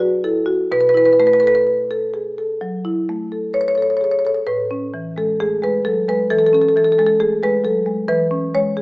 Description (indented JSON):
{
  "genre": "classical, contemporary piece for solo marimba",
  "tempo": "65 BPM",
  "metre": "4/4",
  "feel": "rubato",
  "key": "A major",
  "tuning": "A4 = 440 Hz",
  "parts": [
    { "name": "marimba with medium mallets", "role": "solo", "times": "0.0-8.8 s", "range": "A2 to C#5", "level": "-15 LUFS", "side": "equal", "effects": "none" }
  ],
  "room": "moderate stone room reverb, RT60 1.2 s",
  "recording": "small speaker sound",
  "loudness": "-15 LUFS",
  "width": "side -25 dB against mid",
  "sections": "0.0-8.8 A section",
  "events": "none",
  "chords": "0.0 Dadd9 (rootless); 0.7 B9sus4; 4.5 Amaj7; 8.1 E6",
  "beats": "| 0.69 1.65 2.60 3.53 | 4.46 5.38 6.29 7.20 | 8.10"
}